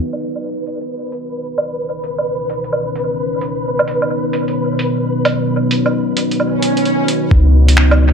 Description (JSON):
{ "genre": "future garage", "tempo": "131 BPM", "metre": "4/4", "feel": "swing 64% on 16ths", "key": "unclear", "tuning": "A4 = 439 Hz", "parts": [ { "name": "deep dark ambient pad", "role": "sustained chords", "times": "0.0-8.1 s", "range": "B2 to D#5", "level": "-18 LUFS", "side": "equal", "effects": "chorus, built-in reverb, sidechain pumping" }, { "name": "flickering grainy texture", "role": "texture", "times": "0.5-7.3 s", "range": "B4", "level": "-23 LUFS", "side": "left 1 dB", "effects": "built-in reverb" }, { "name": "lo-fi sampler-style drum kit", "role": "drums", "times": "0.1-8.0 s", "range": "finger snaps, hi-hat, woodblock", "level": "-20 LUFS", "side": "right 2 dB", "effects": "studio reverb, dub echo" }, { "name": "swell", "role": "sound effects", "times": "6.5-7.3 s", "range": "none", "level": "-20 LUFS", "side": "equal", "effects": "none" }, { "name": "soft 808-style bass", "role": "bass", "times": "7.3-8.1 s", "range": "C#2", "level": "-10 LUFS", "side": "equal", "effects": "tube saturation, sidechain pumping" }, { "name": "electronic kick drum", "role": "drums", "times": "7.3-7.4 s", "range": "none", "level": "-11 LUFS", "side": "equal", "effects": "studio reverb" } ], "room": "moderate spring reverb, RT60 1.4 s", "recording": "echo-heavy mix, low-pass filter", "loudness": "-14 LUFS", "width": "side -6 dB against mid", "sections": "0.0-7.3 A section", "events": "filter sweep on ambient pad 0.0-7.3; filter sweep 0.0-7.3; swell 6.5-7.3", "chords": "0.0 C#m7; 3.6 Badd9; 7.3 C#m7" }